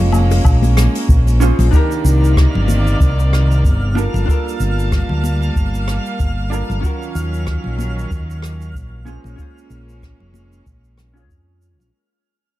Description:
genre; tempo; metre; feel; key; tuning
sunset chillout; 94 BPM; 4/4; swing 57% on 16ths; unclear; A4 = 444 Hz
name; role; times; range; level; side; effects
vibraphone with medium mallets; melody; 0.0-1.0 s; F5; -31 LUFS; left 3 dB; ping-pong delay
vintage hollow-body jazz guitar; accompaniment; 0.0-11.9 s; Db4 to Db5; -24 LUFS; right 1 dB; auto-pan, low-pass filter, ping-pong delay
rich chamber string section; sustained chords; 0.0-11.9 s; C3 to A5; -24 LUFS; right 1 dB; none
fingered electric bass; bass; 0.0-11.9 s; F1 to F2; -16 LUFS; equal; none
jazz brush drum kit; drums; 0.1-11.9 s; hi-hat, rim click, shaker, woodblock; -28 LUFS; left 1 dB; none
congas and bongos; percussion; 0.1-11.9 s; none; -24 LUFS; left 3 dB; none
electronic kick drum; drums; 0.5-11.4 s; none; -15 LUFS; equal; none
twinkling granular texture; texture; 2.2-12.0 s; F6; -33 LUFS; right 4 dB; built-in reverb
room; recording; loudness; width
studio reverb; dark, warm production; -13 LUFS; side -16 dB against mid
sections
0.0-1.7 A section; 1.7-11.9 B section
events
fade-out 1.7-11.9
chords
0.0 Bbm9; 1.7 Cm9; 4.0 Gm9; 6.8 Ebm9; 9.1 Bbm9

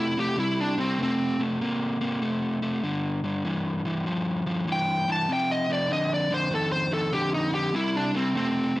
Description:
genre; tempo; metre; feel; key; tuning
blues; 98 BPM; 4/4; swing 66% on 8ths; C mixolydian; A4 = 440 Hz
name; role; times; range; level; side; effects
smooth overdriven lead guitar; melody; 0.0-8.8 s; C4 to A5; -26 LUFS; equal; none
overdriven semi-hollow guitar; riff; 0.0-8.8 s; F2 to Bb3; -26 LUFS; equal; spring reverb
room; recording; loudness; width
light reverb; none; -24 LUFS; side -17 dB against mid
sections
0.0-8.8 A section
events
none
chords
0.0 C5; 2.8 G5; 5.3 F5; 7.7 C5

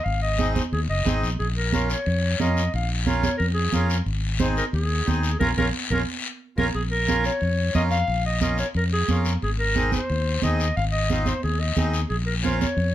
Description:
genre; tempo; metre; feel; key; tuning
latin, cumbia; 179 BPM; 4/4; straight; Bb minor; A4 = 441 Hz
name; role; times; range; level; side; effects
warm clarinet; melody; 0.0-12.9 s; Ab4 to F5; -27 LUFS; left 1 dB; plate reverb
fingered electric bass; bass; 0.1-12.9 s; Gb1 to F2; -24 LUFS; left 1 dB; none
guiro; percussion; 0.1-12.9 s; none; -33 LUFS; left 6 dB; none
accordion; accompaniment; 0.4-12.7 s; C4 to Bb4; -29 LUFS; right 1 dB; none
congas; percussion; 0.4-12.8 s; none; -28 LUFS; right 4 dB; none
room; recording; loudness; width
light reverb; none; -21 LUFS; side -13 dB against mid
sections
0.0-6.7 A section; 6.7-12.9 A section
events
band accent 5.4-6.7; drum fill 6.1-6.7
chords
0.0 Ab; 1.4 Bbm; 4.1 Ab; 5.4 Bbm; 9.4 Ab; 12.1 Bbm

